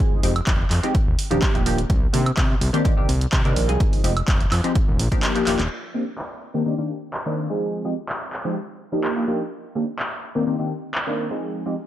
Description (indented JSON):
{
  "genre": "filtered disco house",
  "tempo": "126 BPM",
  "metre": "4/4",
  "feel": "straight",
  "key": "C minor",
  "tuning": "A4 = 439 Hz",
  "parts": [
    { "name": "funky polysynth comp", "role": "accompaniment", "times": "0.0-11.8 s", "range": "Eb3 to Bb4", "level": "-24 LUFS", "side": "equal", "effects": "chorus, phaser, sidechain pumping, low-pass filter" },
    { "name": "electronic kick drum", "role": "drums", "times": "0.0-5.2 s", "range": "none", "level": "-21 LUFS", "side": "equal", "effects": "none" },
    { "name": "fat analog bass", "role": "bass", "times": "0.1-5.7 s", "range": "Eb1 to C3", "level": "-22 LUFS", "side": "equal", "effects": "sidechain pumping, low-pass filter" },
    { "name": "punchy analog drum machine", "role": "drums", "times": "0.2-11.0 s", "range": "handclaps, hi-hat, woodblock", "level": "-27 LUFS", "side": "right 1 dB", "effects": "sidechain pumping on hats, low-pass filter on hats, sidechain pumping on perc, low-pass filter on perc, low-pass filter on snare, low-pass filter on room" }
  ],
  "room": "light reverb, digital ambience",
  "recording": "none",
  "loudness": "-20 LUFS",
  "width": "side -12 dB against mid",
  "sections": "0.0-5.7 A section; 5.7-11.9 B section",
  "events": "kick drops out 5.2-5.7; drum fill 5.5; band accent 5.6; filter sweep on drum 5.7-11.9; filter sweep on analog polysynth 5.7-11.9",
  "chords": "0.0 Fm9; 0.9 Ebmaj9; 1.9 Cm9; 3.8 Fm9; 4.8 Ebmaj9; 5.7 Cm9; 7.6 Fm9; 8.6 Ebmaj9; 9.5 Cm9"
}